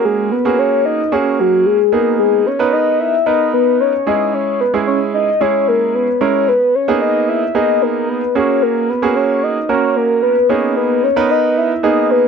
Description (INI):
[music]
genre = dance-pop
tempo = 112 BPM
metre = 4/4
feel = straight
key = G# minor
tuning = A4 = 439 Hz
[part]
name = soft octave-layered synth lead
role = melody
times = 0.0-12.3 s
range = F#4 to E5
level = -14 LUFS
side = left 2 dB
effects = chorus, phaser, tape echo
[part]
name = clear concert grand piano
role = accompaniment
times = 0.0-12.3 s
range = G#3 to B4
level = -17 LUFS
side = right 7 dB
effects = none
[sound]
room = light reverb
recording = dry, close 1970s-style studio recording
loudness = -12 LUFS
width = side -6 dB against mid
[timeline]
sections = 0.0-12.3 A section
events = build-up 0.0-12.3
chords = 0.0 F#add9; 1.9 G#madd9; 4.1 C#m; 6.5 G#madd9; 8.4 F#add9; 10.5 G#madd9